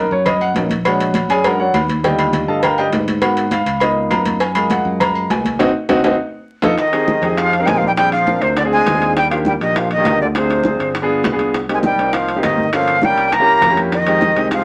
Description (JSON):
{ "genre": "Afro-Cuban jazz", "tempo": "202 BPM", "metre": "4/4", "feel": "straight", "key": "F minor from 6.8 s", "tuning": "A4 = 440 Hz", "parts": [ { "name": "warm concert grand piano", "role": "accompaniment", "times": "0.0-14.6 s", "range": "D3 to Bb5", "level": "-21 LUFS", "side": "equal", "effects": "none" }, { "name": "modern bright fingered electric bass", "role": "bass", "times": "0.0-14.6 s", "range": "G1 to Ab2", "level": "-26 LUFS", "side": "equal", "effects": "none" }, { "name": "congas", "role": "percussion", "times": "0.1-14.6 s", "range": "none", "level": "-27 LUFS", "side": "equal", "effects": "none" }, { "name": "agogo bells and timbales", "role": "percussion", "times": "0.3-14.6 s", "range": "none", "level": "-26 LUFS", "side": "equal", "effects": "none" }, { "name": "cowbell and bongos", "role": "percussion", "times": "0.3-14.6 s", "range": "none", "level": "-25 LUFS", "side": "equal", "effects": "none" }, { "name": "breathy bright jazz flute", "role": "melody", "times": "6.8-14.6 s", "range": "C5 to Bb5", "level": "-18 LUFS", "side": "equal", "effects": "none" }, { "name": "trombone with plunger mute", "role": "second line", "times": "6.8-14.6 s", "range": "C3 to Bb3", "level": "-26 LUFS", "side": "equal", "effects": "none" } ], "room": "moderate studio reverb, RT60 0.6 s", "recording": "vinyl crackle", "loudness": "-16 LUFS", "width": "mono", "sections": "0.0-6.8 A section; 6.8-14.6 B section", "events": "grand piano solo 0.0-6.8; drum fill 5.6-6.8; band accent 5.6-6.8", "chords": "0.0 Bmaj9 (rootless); 0.9 Bb7alt; 2.0 Ebmaj9#11; 3.2 Abm7; 3.8 Db13; 4.4 Gbmaj9; 5.6 Cdim; 6.2 F7; 6.8 Fm7; 8.0 Bb7; 9.2 Ebmaj9; 10.4 Dm7b5; 10.9 G7b9; 11.5 Cm7; 12.7 Gm7b5; 13.3 C7b9; 13.9 Fm7" }